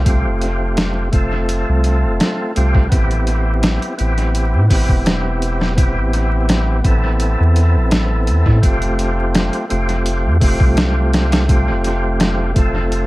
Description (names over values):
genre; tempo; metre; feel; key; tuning
trip hop; 84 BPM; 4/4; straight; unclear; A4 = 440 Hz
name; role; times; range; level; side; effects
percussive tonewheel organ; accompaniment; 0.0-13.1 s; A3 to A4; -20 LUFS; equal; overdrive, fast rotary speaker, harmonic tremolo, vintage 12-bit sampler grit, low-pass filter, tape echo
soft dub sub bass; bass; 0.0-13.1 s; E1 to A2; -16 LUFS; equal; none
trip hop sampler-style drum kit; drums; 0.1-13.1 s; hi-hat, kick drum, snare drum; -17 LUFS; equal; dub echo
room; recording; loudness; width
digital ambience; echo-heavy mix, vinyl crackle; -13 LUFS; side -19 dB against mid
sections
0.0-13.1 A section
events
none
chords
0.0 Fadd9; 2.9 Am7; 8.6 Fadd9